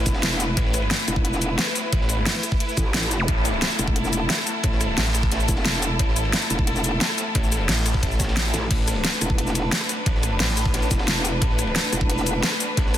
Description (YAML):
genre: dark technical drum and bass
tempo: 177 BPM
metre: 4/4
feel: straight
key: unclear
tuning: A4 = 444 Hz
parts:
  - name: rich studio string section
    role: sustained chords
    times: 0.0-13.0 s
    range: A3 to B4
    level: -27 LUFS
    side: left 1 dB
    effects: sidechain pumping
  - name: snarling distorted saw bass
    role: bass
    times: 0.0-13.0 s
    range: A1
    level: -24 LUFS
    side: equal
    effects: distortion, tube saturation, sidechain pumping
  - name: metallic wobble bass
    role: bass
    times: 0.1-12.4 s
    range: E1 to A1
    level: -24 LUFS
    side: equal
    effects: chorus
  - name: crunchy breakbeat drum kit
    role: drums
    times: 0.1-13.0 s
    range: hi-hat, ride cymbal, snare drum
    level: -33 LUFS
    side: equal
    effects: high-pass filter on cymbals, high-pass filter on hats, high-pass filter on snare, high-pass filter on room
  - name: dubstep drum kit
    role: drums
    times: 0.1-13.0 s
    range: cabasa, crash cymbal, hi-hat, rim click, snare drum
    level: -25 LUFS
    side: left 1 dB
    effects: overdrive
  - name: electronic kick drum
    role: drums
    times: 0.1-12.8 s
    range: none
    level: -23 LUFS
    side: equal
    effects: none
  - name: zap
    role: sound effects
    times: 3.2-3.3 s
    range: none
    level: -29 LUFS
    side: equal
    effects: none
room: light reverb, small room ambience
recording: dense, heavily limited modern master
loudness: -20 LUFS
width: side -11 dB against mid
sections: 0.0-13.0 A section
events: none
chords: 0.0 Asus2